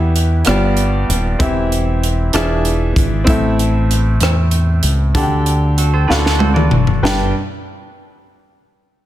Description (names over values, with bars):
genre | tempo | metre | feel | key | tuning
slow gospel | 64 BPM (dotted quarters) | 6/8 | straight | G major | A4 = 435 Hz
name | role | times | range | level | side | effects
bright baby grand piano | accompaniment | 0.0-7.3 s | G2 to G5 | -18 LUFS | equal | none
fingered electric bass | bass | 0.0-7.3 s | Eb1 to E2 | -15 LUFS | equal | none
crisp fusion drum kit | drums | 0.2-7.2 s | hi-hat, kick drum, rim click, snare drum, toms | -18 LUFS | equal | none
clean electric guitar | second line | 5.8-7.0 s | F#4 to D5 | -24 LUFS | right 6 dB | spring reverb, slapback echo
room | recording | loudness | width
small room ambience | dense, heavily limited modern master | -12 LUFS | side -13 dB against mid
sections
0.0-7.0 A section; 7.0-8.9 B section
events
drum fill 6.1-7.0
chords
0.5 G7; 1.4 C/E; 2.3 E7b9; 3.3 Am; 5.1 Dsus4; 6.1 D; 7.0 G